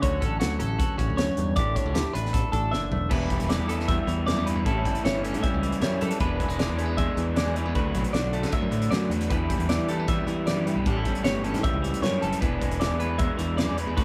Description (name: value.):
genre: math rock and midwest emo.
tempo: 155 BPM.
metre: 4/4.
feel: straight.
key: unclear.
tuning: A4 = 440 Hz.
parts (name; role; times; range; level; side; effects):
clean electric guitar; accompaniment; 0.0-14.0 s; D2 to A4; -34 LUFS; equal; none.
twelve-string electric guitar; arpeggios; 0.0-14.0 s; F#4 to E5; -34 LUFS; equal; none.
modern bright picked electric bass; bass; 0.0-14.0 s; E1 to E3; -31 LUFS; equal; none.
loose indie drum kit; drums; 0.0-14.0 s; crash cymbal, hi-hat, kick drum, snare drum, toms; -31 LUFS; equal; none.
raw garage guitar; riff; 3.1-14.0 s; A2 to G#4; -33 LUFS; equal; overdrive.
room: moderate small room reverb, RT60 0.5 s.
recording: band playing live in one room.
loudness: -26 LUFS.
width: mono.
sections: 0.0-3.1 A section; 3.1-14.0 B section.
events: drum fill 2.7-3.1.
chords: 0.0 Dmaj7; 1.6 A7sus4; 3.1 Em7; 4.7 A7; 6.2 E7; 7.8 D6; 9.3 Em7; 10.9 A7; 12.4 E7.